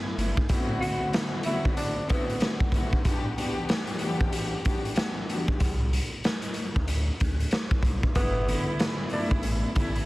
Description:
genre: hip hop, boom-bap hip-hop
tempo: 94 BPM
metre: 4/4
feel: swing 61% on 16ths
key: E minor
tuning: A4 = 444 Hz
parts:
  - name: dark studio string section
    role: accompaniment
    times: 0.0-10.1 s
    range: G2 to G4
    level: -31 LUFS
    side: left 1 dB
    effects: cassette tape, high-pass filter, low-pass filter
  - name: warm sub bass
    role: bass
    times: 0.2-0.3, 5.6-10.0 s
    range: G1 to D2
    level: -28 LUFS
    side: equal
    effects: none
  - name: raw garage drum kit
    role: drums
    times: 0.2-10.1 s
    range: hi-hat, kick drum, snare drum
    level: -26 LUFS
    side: equal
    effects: none
  - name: growling tenor saxophone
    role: melody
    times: 0.8-2.6, 8.2-9.3 s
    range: B3 to F#4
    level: -32 LUFS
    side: equal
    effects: high-pass filter, low-pass filter, digital delay
room: small room reverb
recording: dense, heavily limited modern master, vinyl crackle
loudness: -24 LUFS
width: side -19 dB against mid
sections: 0.0-10.1 A section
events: none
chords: 0.5 D13; 3.0 Em9; 5.6 Csus2; 8.2 G69

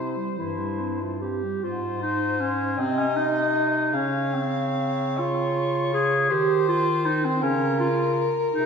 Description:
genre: classical, lyrical piece for single-reed quartet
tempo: 47-55 BPM (dotted quarters)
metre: 6/8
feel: rubato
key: unclear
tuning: A4 = 436 Hz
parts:
  - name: mellow soprano saxophone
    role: melody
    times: 0.0-8.7 s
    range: Bb4 to F5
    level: -29 LUFS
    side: left 4 dB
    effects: none
  - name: clear alto saxophone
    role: second line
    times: 0.0-8.7 s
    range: E3 to Eb5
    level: -32 LUFS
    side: right 4 dB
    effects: none
  - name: mellow clarinet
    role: accompaniment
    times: 0.0-8.7 s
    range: C4 to Ab4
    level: -24 LUFS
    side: equal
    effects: none
  - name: clear bass clarinet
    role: bass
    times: 0.0-8.7 s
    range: G2 to Eb3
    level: -30 LUFS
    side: equal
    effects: none
room: wet scoring stage reverb, RT60 1.7 s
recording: heard from further back in the room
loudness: -22 LUFS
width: side -6 dB against mid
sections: 0.0-1.6 A section; 1.6-8.7 B section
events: none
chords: 0.0 C; 1.6 Ab; 2.8 Cm; 3.9 Db; 6.3 Eb69; 7.4 Db6

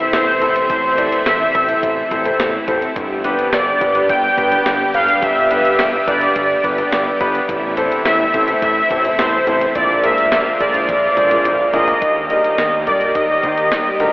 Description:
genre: synth-pop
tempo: 106 BPM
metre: 4/4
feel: straight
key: G mixolydian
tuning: A4 = 436 Hz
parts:
  - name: analog synth brass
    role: melody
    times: 0.0-14.1 s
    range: C5 to G5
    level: -15 LUFS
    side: equal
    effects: chorus, diffuse ambient delay
  - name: clear grand piano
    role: accompaniment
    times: 0.0-14.1 s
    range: B3 to D5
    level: -20 LUFS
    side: left 1 dB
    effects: analog chorus
  - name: string machine, violins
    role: sustained chords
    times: 0.0-14.1 s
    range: C3 to G4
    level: -23 LUFS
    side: equal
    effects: ensemble chorus
  - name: fat analog bass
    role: bass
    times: 0.0-14.1 s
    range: G1 to Eb3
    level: -25 LUFS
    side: equal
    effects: none
  - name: gated 80s digital drum machine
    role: drums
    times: 0.1-14.1 s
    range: hi-hat, kick drum, snare drum, toms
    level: -25 LUFS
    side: equal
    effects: gated reverb, gated reverb snare
room: wet huge ambient reverb, RT60 7.6 s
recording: dreamy mix soaked in reverb, telephone sound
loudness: -13 LUFS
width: side -21 dB against mid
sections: 0.0-12.0 A section; 12.0-14.1 B section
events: drum fill 10.9-12.0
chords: 0.0 Am; 3.0 G; 7.5 Am; 9.8 Bb7; 12.0 Eb

